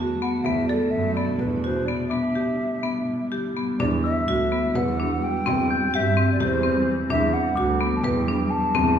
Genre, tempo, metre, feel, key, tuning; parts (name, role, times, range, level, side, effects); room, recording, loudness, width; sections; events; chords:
contemporary instrumental, chamber music in an uneven meter; 254 BPM (eighths); 7/8; straight; A4 = 440 Hz
granular cloud pad; sustained chords; 0.0-9.0 s; B2 to F#4; -31 LUFS; equal; built-in reverb
marimba with hard mallets; arpeggios; 0.0-9.0 s; B3 to B4; -24 LUFS; left 2 dB
rich double bass; bass; 0.0-9.0 s; D2 to G2; -27 LUFS; right 4 dB
glockenspiel with rubber mallets; texture; 0.0-8.9 s; A5 to G6; -33 LUFS; left 2 dB
mellow hollow jazz flute; melody; 0.2-9.0 s; B4 to A5; -27 LUFS; equal
frame drum; percussion; 0.2-9.0 s; -34 LUFS; left 1 dB
wet recital hall reverb, RT60 1.5 s; small room reverb; -21 LUFS; side -8 dB against mid
0.0-3.8 A section; 3.8-9.0 B section
break 2.1-3.8
0.5 Bm7; 2.1 Em7; 3.8 Gmaj7; 5.5 C/E; 7.1 Gmaj7